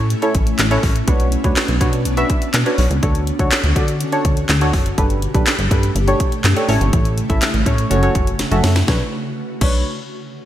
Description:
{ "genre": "dance-pop", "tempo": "123 BPM", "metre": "4/4", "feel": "straight", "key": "B minor", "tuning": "A4 = 440 Hz", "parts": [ { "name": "deep mellow chord stab", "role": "accompaniment", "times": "0.0-9.8 s", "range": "C#4 to E5", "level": "-21 LUFS", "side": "right 1 dB", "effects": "chorus, sidechain pumping" }, { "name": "ethereal airy pad", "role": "sustained chords", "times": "0.0-9.1 s", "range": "B2 to G4", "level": "-26 LUFS", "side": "equal", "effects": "ensemble chorus, built-in reverb, sidechain pumping" }, { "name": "plucky analog bass", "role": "bass", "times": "0.0-9.8 s", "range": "F#1 to D3", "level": "-18 LUFS", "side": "equal", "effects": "sidechain pumping" }, { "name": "house drum kit", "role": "drums", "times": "0.1-9.7 s", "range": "crash cymbal, handclaps, hi-hat, kick drum, snare drum", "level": "-18 LUFS", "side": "equal", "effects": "gated reverb" } ], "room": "light reverb, digital ambience", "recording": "bright 1980s-style digital production", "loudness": "-14 LUFS", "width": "side -12 dB against mid", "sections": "0.0-8.9 A section; 8.9-10.5 B section", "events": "drum fill 8.4-8.9", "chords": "0.0 A; 1.1 Bmadd9; 3.0 Dmaj7; 5.0 Gadd9; 6.7 A; 7.9 F#m; 8.9 Bmadd9", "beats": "0.10 0.59 | 1.08 1.56 2.05 2.54 | 3.03 3.52 4.00 4.49 | 4.98 5.47 5.95 6.44 | 6.93 7.42 7.91 8.39 | 8.88 9.37" }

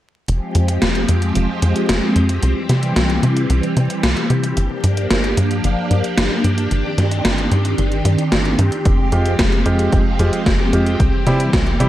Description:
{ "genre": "italo disco", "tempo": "112 BPM", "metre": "4/4", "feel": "straight", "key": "F dorian", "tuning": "A4 = 444 Hz", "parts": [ { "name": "phased string machine", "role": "sustained chords", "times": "0.3-11.9 s", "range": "Eb3 to G4", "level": "-20 LUFS", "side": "equal", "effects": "ensemble chorus, phaser" }, { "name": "tight sequencer bass", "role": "bass", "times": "0.3-11.9 s", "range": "F1 to C3", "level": "-18 LUFS", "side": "equal", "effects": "tube saturation" }, { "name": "gated 80s digital drum machine", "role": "drums", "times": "0.3-11.9 s", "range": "hi-hat, snare drum", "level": "-21 LUFS", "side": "equal", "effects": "gated reverb, gated reverb snare, overdrive" }, { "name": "electronic kick drum", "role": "drums", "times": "8.9-11.6 s", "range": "none", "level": "-18 LUFS", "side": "equal", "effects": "none" }, { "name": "clear grand piano", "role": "stabs", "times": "9.1-11.9 s", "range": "G3 to G4", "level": "-22 LUFS", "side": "right 1 dB", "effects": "none" } ], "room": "light reverb", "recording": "dark, warm production, vinyl crackle", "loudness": "-14 LUFS", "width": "side -13 dB against mid", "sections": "0.3-11.9 A section", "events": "none", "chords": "0.3 Fmadd9; 2.4 C; 4.6 Gm7; 6.7 Cmadd9/G; 8.9 Fmadd9; 11.0 C", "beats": "| 0.28 0.82 1.35 1.89 | 2.43 2.96 3.50 4.03 | 4.57 5.10 5.64 6.18 | 6.71 7.25 7.78 8.32 | 8.85 9.39 9.93 10.46 | 11.00 11.53" }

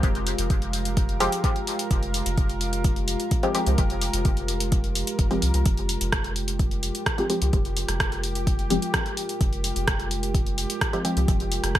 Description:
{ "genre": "dub techno", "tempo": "128 BPM", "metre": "4/4", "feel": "straight", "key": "F minor", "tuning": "A4 = 444 Hz", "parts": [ { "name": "dark analog pad", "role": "sustained chords", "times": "0.0-11.8 s", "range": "Ab3 to F5", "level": "-32 LUFS", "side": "right 1 dB", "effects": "chorus, sidechain pumping" }, { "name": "filtered dub chord stab", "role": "stabs", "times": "0.0-11.8 s", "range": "F3 to G4", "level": "-28 LUFS", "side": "left 1 dB", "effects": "chorus, phaser, sidechain pumping, dub echo" }, { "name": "soft dub sub bass", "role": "bass", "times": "0.0-11.8 s", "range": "F1 to C2", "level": "-28 LUFS", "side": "equal", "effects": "sidechain pumping" }, { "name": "deep house drum kit", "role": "drums", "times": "0.0-11.8 s", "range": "hi-hat, rim click", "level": "-28 LUFS", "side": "equal", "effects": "gated reverb" }, { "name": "electronic kick drum", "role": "drums", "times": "0.0-11.8 s", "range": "none", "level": "-24 LUFS", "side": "equal", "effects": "none" }, { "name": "bubbling stepped-filter texture", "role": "texture", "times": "0.0-11.8 s", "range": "G4 to Bb4", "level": "-36 LUFS", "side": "right 1 dB", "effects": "chorus, built-in reverb, sidechain pumping" } ], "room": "light reverb", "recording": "bright 1980s-style digital production", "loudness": "-22 LUFS", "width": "side -13 dB against mid", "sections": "0.0-11.8 A section", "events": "none", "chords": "0.0 Fmadd9", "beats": "| 0.03 0.50 0.97 1.44 | 1.91 2.38 2.85 3.31 | 3.78 4.25 4.72 5.19 | 5.66 6.13 6.59 7.06 | 7.53 8.00 8.47 8.94 | 9.41 9.88 10.35 10.81 | 11.28 11.75" }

